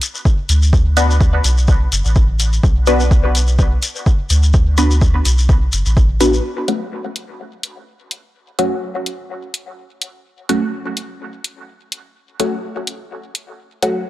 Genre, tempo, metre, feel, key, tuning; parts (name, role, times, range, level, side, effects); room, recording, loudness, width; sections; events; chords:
dub techno; 126 BPM; 4/4; swing 55% on 16ths; F# minor; A4 = 441 Hz
electronic hi-hat; drums; 0.0-13.9 s; -23 LUFS; left 1 dB
shekere; percussion; 0.0-6.4 s; -23 LUFS; left 3 dB
electronic kick drum; drums; 0.3-6.1 s; -13 LUFS; equal
soft dub sub bass; bass; 0.5-6.4 s; F#1 to D2; -14 LUFS; equal; sidechain pumping
filtered dub chord stab; stabs; 1.0-14.1 s; F#3 to B4; -20 LUFS; left 1 dB; phaser, sidechain pumping, dub echo
light reverb; dry, gritty hardware recording, transformer saturation; -13 LUFS; side -16 dB against mid
0.0-6.4 A section; 6.4-14.1 B section
0.0 Bm; 6.4 F#m